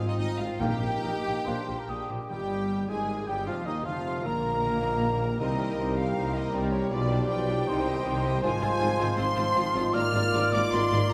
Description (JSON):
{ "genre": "classical, dramatic, fast romantic movement for symphony orchestra", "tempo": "138-163 BPM", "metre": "4/4", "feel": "rubato", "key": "Eb major", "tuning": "A4 = 440 Hz", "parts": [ { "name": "rich symphonic violin section", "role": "melody", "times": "0.0-11.1 s", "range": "Db5 to F6", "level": "-39 LUFS", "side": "equal", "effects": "none" }, { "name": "warm French horn section", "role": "sustained chords", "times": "0.0-11.1 s", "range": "Eb3 to G4", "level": "-37 LUFS", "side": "equal", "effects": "none" }, { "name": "concert harp", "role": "arpeggios", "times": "0.0-11.1 s", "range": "Ab2 to G4", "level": "-39 LUFS", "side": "equal", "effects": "none" }, { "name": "warm studio double bass section", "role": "bass", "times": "0.0-11.0 s", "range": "F1 to Eb2", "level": "-37 LUFS", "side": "equal", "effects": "none" }, { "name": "warm symphonic cello section", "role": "bass", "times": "0.0-11.1 s", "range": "Eb2 to C3", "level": "-38 LUFS", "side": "equal", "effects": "none" }, { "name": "warm tuba", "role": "bass", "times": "0.0-11.0 s", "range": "F1 to Eb2", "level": "-38 LUFS", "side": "equal", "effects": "none" }, { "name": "mellow hollow silver concert flute", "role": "second line", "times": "0.1-11.1 s", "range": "Db5 to F6", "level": "-37 LUFS", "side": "equal", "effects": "none" }, { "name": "warm symphonic violin section", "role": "second line", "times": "0.1-11.0 s", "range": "Eb4 to Eb5", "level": "-42 LUFS", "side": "equal", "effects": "none" }, { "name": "warm symphonic viola section", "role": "accompaniment", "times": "0.1-11.1 s", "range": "Eb3 to G4", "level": "-41 LUFS", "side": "equal", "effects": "none" }, { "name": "mellow clarinet", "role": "second line", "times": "0.6-11.1 s", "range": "D4 to Bb4", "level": "-42 LUFS", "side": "equal", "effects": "none" }, { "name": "mellow cor anglais", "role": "second line", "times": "0.6-11.1 s", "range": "G4 to Ab5", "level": "-39 LUFS", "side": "equal", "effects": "none" }, { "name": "mellow bassoon", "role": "accompaniment", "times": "0.6-10.9 s", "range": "Eb3 to Bb3", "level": "-40 LUFS", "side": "equal", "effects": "none" }, { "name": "timpani", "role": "percussion", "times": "0.6-1.2 s", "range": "Bb2", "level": "-37 LUFS", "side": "equal", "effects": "none" }, { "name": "clear trumpet section", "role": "stabs", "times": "2.3-11.1 s", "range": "Eb4 to D5", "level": "-36 LUFS", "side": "equal", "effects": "none" } ], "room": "wet scoring stage reverb, RT60 2.1 s", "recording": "none", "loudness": "-28 LUFS", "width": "mono", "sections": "0.0-2.3 A section; 2.3-11.1 B section", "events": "none", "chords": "0.0 Fm/Ab; 0.6 Eb/Bb; 1.5 Bb; 2.3 Eb/G; 3.9 Bb7/F; 4.6 Eb/Bb; 5.4 Cm7; 6.9 G7/B; 7.7 Cm; 8.4 Fm/Ab; 9.9 Bb7/Ab", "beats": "0.18 | 0.61 1.04 1.47 1.89 | 2.31 2.70 3.09 3.47 | 3.85 4.26 4.64 5.03 | 5.41 5.79 6.16 6.53 | 6.91 7.31 7.69 8.06 | 8.44 8.81 9.19 9.56 | 9.95 10.34 10.73 11.12" }